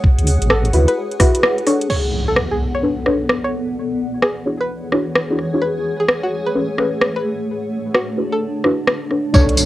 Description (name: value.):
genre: UK garage, two-step garage.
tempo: 129 BPM.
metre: 4/4.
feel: swing 64% on 16ths.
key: unclear.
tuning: A4 = 440 Hz.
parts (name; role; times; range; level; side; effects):
electronic kick drum; drums; 0.0-1.3, 9.3-9.5 s; none; -13 LUFS; equal; studio reverb, cassette tape.
granular cloud pad; texture; 0.0-9.3 s; E3 to F#5; -24 LUFS; left 1 dB; built-in reverb, sidechain pumping, cassette tape.
deep soft wobble bass; bass; 0.2-0.9, 9.3-9.5 s; A1 to D2; -15 LUFS; equal; chorus.
garage drum kit; drums; 0.2-9.7 s; crash cymbal, hi-hat, rim click, tambourine; -17 LUFS; equal; studio reverb, cassette tape.
string-like resonator pluck; melody; 0.5-9.5 s; F#4 to C#5; -23 LUFS; equal; chorus, cassette tape, analog delay.
deep mellow chord stab; stabs; 0.7-9.7 s; C#4 to D5; -19 LUFS; left 1 dB; chorus, cassette tape, tape echo.
impact; sound effects; 1.9-3.8, 9.3-9.7 s; none; -22 LUFS; equal; none.
room: moderate booth ambience, RT60 0.2 s.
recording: home recording on cassette.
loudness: -16 LUFS.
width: side -15 dB against mid.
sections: 0.0-1.9 A section; 1.9-9.3 B section.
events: kick drops out 1.4-1.9; band accent 1.4; impact 1.9-3.8, 9.3-9.7.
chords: 0.0 D69; 1.9 Bm9; 3.5 E13; 5.6 Amaj9; 7.5 D69.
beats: | 0.04 0.50 0.97 1.43 | 1.90 2.36 2.83 3.29 | 3.76 4.22 4.69 5.15 | 5.62 6.08 6.55 7.01 | 7.48 7.95 8.41 8.88 | 9.34.